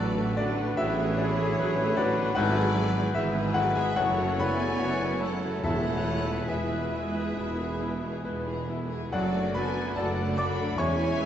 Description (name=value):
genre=classical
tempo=67-77 BPM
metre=4/4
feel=rubato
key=unclear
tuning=A4 = 439 Hz
part: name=clear grand piano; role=melody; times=0.0-11.3 s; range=E2 to D6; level=-30 LUFS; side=left 2 dB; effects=none
part: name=warm symphonic violin section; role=melody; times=0.0-11.3 s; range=B4 to B5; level=-40 LUFS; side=left 3 dB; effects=none
part: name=hollow concert flute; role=second line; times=0.0-11.3 s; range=F#4 to F#5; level=-38 LUFS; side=left 1 dB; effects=none
part: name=mellow clarinet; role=second line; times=0.0-11.3 s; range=G#4 to E5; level=-38 LUFS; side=right 1 dB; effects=none
part: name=mellow cor anglais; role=second line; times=0.0-11.3 s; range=D4 to D5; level=-40 LUFS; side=right 1 dB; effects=none
part: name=warm symphonic violin section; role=second line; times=0.0-11.3 s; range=A3 to A4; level=-38 LUFS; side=left 3 dB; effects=none
part: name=warm symphonic viola section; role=accompaniment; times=0.0-11.3 s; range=C#3 to B3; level=-36 LUFS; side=right 1 dB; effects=none
part: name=mellow French horn section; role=sustained chords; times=0.0-11.3 s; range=G#3 to F#4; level=-38 LUFS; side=left 4 dB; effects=none
part: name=clear trumpet section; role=stabs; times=0.0-11.3 s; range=B4 to D5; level=-37 LUFS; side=equal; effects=none
part: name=mellow tuba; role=bass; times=0.0-11.3 s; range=E1 to A1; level=-36 LUFS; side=right 3 dB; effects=none
part: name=rich symphonic cello section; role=bass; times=0.0-11.3 s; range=D3 to D4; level=-35 LUFS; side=right 3 dB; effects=none
part: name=warm studio double bass section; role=bass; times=0.0-11.3 s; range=E1 to E2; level=-34 LUFS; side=right 2 dB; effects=none
part: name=timpani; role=percussion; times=0.0-0.3, 5.6-6.9 s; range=E2 to A2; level=-39 LUFS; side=equal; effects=none
room=wet recital hall reverb, RT60 1.3 s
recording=heard from further back in the room, nothing above 7.9 kHz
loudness=-25 LUFS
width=side -10 dB against mid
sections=0.0-11.3 A section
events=none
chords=0.0 Bm7/A; 2.4 E/G#; 4.0 F#m7; 5.6 E; 9.1 D/F#